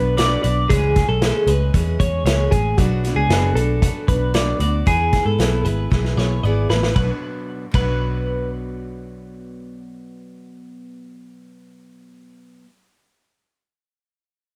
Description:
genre	jangly indie pop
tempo	115 BPM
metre	4/4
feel	straight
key	B dorian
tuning	A4 = 440 Hz
part	picked steel-string acoustic guitar	accompaniment	0.0-12.7 s	B2 to B4	-29 LUFS	equal	none
part	twelve-string electric guitar	arpeggios	0.0-8.5 s	F#4 to D5	-25 LUFS	equal	none
part	vintage muted picked electric bass	bass	0.0-12.6 s	F#1 to G#2	-23 LUFS	equal	none
part	vintage drum kit	drums	0.2-7.9 s	hi-hat, kick drum, ride cymbal, snare drum	-23 LUFS	equal	none
room	light reverb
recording	none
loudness	-19 LUFS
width	mono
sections	0.0-7.0 A section; 7.0-11.1 B section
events	drum fill 5.9-7.0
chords	0.0 Bm; 0.7 C#m; 2.8 Bm; 4.9 E; 7.0 Bm

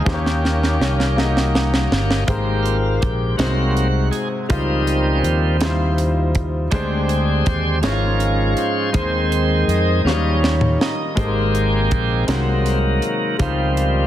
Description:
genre	slow gospel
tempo	54 BPM (dotted quarters)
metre	6/8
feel	straight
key	Ab major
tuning	A4 = 440 Hz
part	warm horn section	melody	0.0-1.6 s	Bb3 to G4	-27 LUFS	left 2 dB	none
part	clear baby grand piano	accompaniment	0.0-14.1 s	Ab2 to Eb5	-23 LUFS	left 3 dB	none
part	bright tonewheel organ	sustained chords	0.0-14.1 s	D3 to Eb5	-22 LUFS	right 1 dB	fast rotary speaker, overdrive
part	fingered electric bass	bass	0.0-14.1 s	G1 to F2	-20 LUFS	equal	none
part	tight funk drum kit	drums	0.1-13.9 s	hi-hat, kick drum, snare drum, toms	-23 LUFS	right 1 dB	none
part	mellow French horn section	sustained chords	2.3-11.2 s	Ab3 to F5	-30 LUFS	right 1 dB	none
room	moderate echo chamber reverb, RT60 2.3 s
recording	dense, heavily limited modern master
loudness	-16 LUFS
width	side -12 dB against mid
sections	0.0-2.3 A section; 2.3-11.2 B section; 11.2-14.1 C section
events	drum fill 0.1-2.3, 10.1-11.2; tonewheel organ solo 2.3-11.2, 11.2-14.1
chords	0.1 Eb7; 2.3 Abmaj9; 3.4 Ab7/C; 4.5 Dbmaj9#11; 6.7 Abmaj7#11/D; 7.8 Db/Ab; 8.9 Ab/Eb; 10.1 Eb9; 11.2 Abmaj9; 12.3 Ab7/C; 13.4 Dbmaj9#11

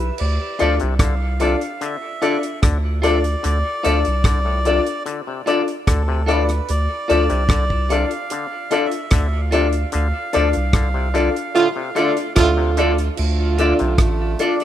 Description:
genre	roots reggae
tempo	74 BPM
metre	4/4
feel	straight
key	D dorian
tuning	A4 = 440 Hz
part	melodica	melody	0.0-14.6 s	A3 to F5	-27 LUFS	right 1 dB	tape echo
part	soft dub sub bass	bass	0.0-14.4 s	A1 to D2	-20 LUFS	equal	none
part	damped 70s drum kit	drums	0.2-14.6 s	crash cymbal, hi-hat, kick drum, rim click	-20 LUFS	equal	none
part	clean electric guitar	accompaniment	0.6-14.6 s	F4 to D5	-25 LUFS	right 2 dB	vibrato effect, tape echo
part	auto-wah clav	arpeggios	0.6-13.9 s	A2 to F3	-28 LUFS	left 7 dB	none
part	warm upright piano	stabs	0.6-14.6 s	D4 to D5	-22 LUFS	left 6 dB	none
part	warm horn section	second line	11.5-14.4 s	D3 to F4	-20 LUFS	right 5 dB	tape echo
room	light reverb, studio reverb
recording	rough home demo mix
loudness	-16 LUFS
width	side -11 dB against mid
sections	0.2-13.2 A section; 13.2-14.6 B section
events	band accent 9.9-13.2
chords	0.2 Dm

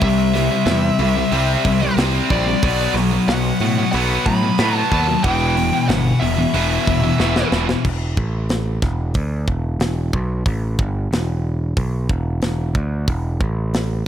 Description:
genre	heavy metal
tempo	92 BPM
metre	4/4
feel	straight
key	E minor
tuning	A4 = 440 Hz
part	high-gain lead guitar	melody	0.0-7.5 s	D5 to B5	-23 LUFS	left 1 dB	distortion
part	distorted electric guitar	riff	0.0-7.8 s	E2 to C4	-27 LUFS	right 1 dB	overdrive
part	high-gain distorted guitar	riff	0.0-7.8 s	E2 to C4	-21 LUFS	left 8 dB	distortion
part	scooped high-gain guitar	riff	0.0-7.8 s	E2 to C4	-22 LUFS	right 12 dB	distortion
part	overdriven picked electric bass	bass	0.0-14.0 s	E1 to A2	-21 LUFS	right 1 dB	none
part	tight metal drum kit	drums	0.0-13.9 s	crash cymbal, hi-hat, kick drum, snare drum	-23 LUFS	equal	none
room	small room ambience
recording	none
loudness	-16 LUFS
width	side -10 dB against mid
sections	0.0-7.8 A section; 7.8-14.1 B section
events	drum fill 7.2-7.8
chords	0.0 C; 2.6 B5; 5.2 Em; 7.8 N.C.; 8.8 E5; 13.4 N.C.

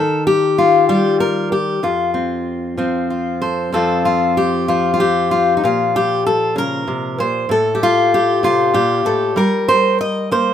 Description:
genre	folk, solo fingerstyle acoustic guitar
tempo	64 BPM (dotted quarters)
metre	6/8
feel	rubato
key	F mixolydian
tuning	A4 = 438 Hz
part	fingerpicked steel-string acoustic guitar	solo	0.0-10.5 s	F2 to Eb5	-14 LUFS	left 1 dB	none
room	light reverb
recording	minimal, uncompressed stereo recording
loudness	-14 LUFS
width	side -9 dB against mid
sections	0.0-3.7 A section; 3.7-10.5 B section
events	none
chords	0.0 Eb; 1.8 F; 5.6 Bbm; 7.5 F/A; 9.4 C5/G

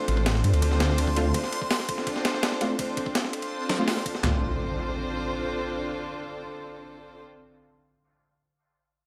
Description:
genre	drum and bass, jungle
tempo	166 BPM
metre	4/4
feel	straight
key	D minor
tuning	A4 = 439 Hz
part	dark chamber string section	sustained chords	0.0-7.2 s	C4 to C5	-33 LUFS	equal	none
part	orchestra-hit-like synth stab	stabs	0.0-7.2 s	A3 to F4	-36 LUFS	equal	none
part	backwards swelling texture	texture	0.0-4.2 s	C6	-41 LUFS	equal	built-in reverb
part	detuned saw bass	bass	0.1-1.3 s	A1 to G2	-25 LUFS	equal	none
part	breakbeat sampler-style drum kit	drums	0.1-4.3 s	handclaps, hi-hat, kick drum, ride cymbal, snare drum, toms	-31 LUFS	equal	high-pass filter on snare, high-pass filter on cymbals, high-pass filter on kick, high-pass filter on hats, high-pass filter on toms
part	impact	sound effects	4.3-7.3 s	none	-37 LUFS	equal	none
room	light reverb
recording	none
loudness	-27 LUFS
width	mono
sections	0.0-4.2 A section; 4.2-7.1 B section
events	none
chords	0.0 Dm7

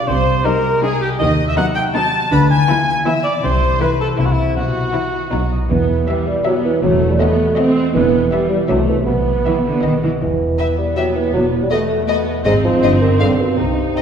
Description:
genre	cinematic, playful, whimsical film cue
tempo	160 BPM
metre	3/4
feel	straight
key	E minor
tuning	A4 = 437 Hz
part	clear cor anglais	second line	0.0-5.5 s	E4 to A5	-19 LUFS	right 1 dB	none
part	rich studio violin section	second line	0.0-14.0 s	Eb4 to B5	-25 LUFS	left 4 dB	none
part	concert harp	arpeggios	0.0-14.0 s	E2 to F5	-22 LUFS	left 3 dB	none
part	clear studio cello section	bass	0.1-13.9 s	E2 to E3	-23 LUFS	right 2 dB	none
part	rich studio double bass section	bass	0.1-13.9 s	E1 to D#2	-22 LUFS	equal	none
part	rich studio violin section	melody	0.5-14.0 s	Eb4 to F5	-26 LUFS	left 5 dB	none
part	rich studio viola section	accompaniment	0.5-14.0 s	E3 to Eb4	-22 LUFS	right 2 dB	none
part	dark bassoon	accompaniment	5.7-14.0 s	B2 to B3	-17 LUFS	right 2 dB	none
room	wet scoring stage reverb, RT60 1.8 s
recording	heard from further back in the room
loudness	-14 LUFS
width	side -7 dB against mid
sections	0.0-5.7 A section; 5.7-14.0 B section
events	none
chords	0.1 Cm; 1.2 B/D#; 2.3 E7/D; 3.4 Am/C; 4.2 C7; 4.6 Bsus4; 5.3 B; 5.7 Em; 6.8 B7/E; 7.9 Em; 8.7 Am/C; 9.1 Em/B; 9.8 B; 10.2 Em; 11.3 B7/E; 12.5 Ab; 12.8 Cm/G; 13.2 G7

